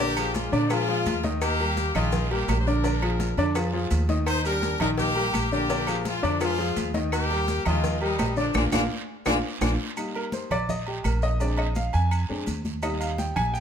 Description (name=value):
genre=latin, salsa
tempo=168 BPM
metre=4/4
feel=straight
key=Eb major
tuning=A4 = 440 Hz
part: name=brilliant horn section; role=melody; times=0.0-9.7 s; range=F3 to C5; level=-28 LUFS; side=left 3 dB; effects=none
part: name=clear concert grand piano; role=accompaniment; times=0.0-13.6 s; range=D3 to Ab5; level=-28 LUFS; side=left 1 dB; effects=none
part: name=upright bass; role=bass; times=0.0-13.6 s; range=Bb1 to Bb2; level=-27 LUFS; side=right 1 dB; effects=none
part: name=congas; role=percussion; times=0.0-13.6 s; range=none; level=-33 LUFS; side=equal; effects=none
part: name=guiro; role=percussion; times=0.0-13.6 s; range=none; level=-41 LUFS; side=right 7 dB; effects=none
part: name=agogo bells and timbales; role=percussion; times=0.2-13.5 s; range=none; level=-35 LUFS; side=right 4 dB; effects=none
part: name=claves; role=percussion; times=0.2-13.5 s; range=none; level=-38 LUFS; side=left 2 dB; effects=none
part: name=maracas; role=percussion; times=0.2-13.6 s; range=none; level=-44 LUFS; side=left 1 dB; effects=none
part: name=cowbell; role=percussion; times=0.4-9.7 s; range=none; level=-37 LUFS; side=left 4 dB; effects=none
room=light reverb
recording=close, detailed microphones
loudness=-23 LUFS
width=side -8 dB against mid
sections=0.0-10.0 A section; 10.0-13.6 B section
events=band accent 8.6-10.0; drum fill 9.3-10.0; grand piano solo 10.0-13.6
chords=0.0 Bb7; 1.4 Eb; 2.8 Bb7; 4.3 Eb; 5.7 Bb7; 7.1 Eb; 8.6 Bb7; 10.0 Eb; 11.4 Bb7; 12.8 Eb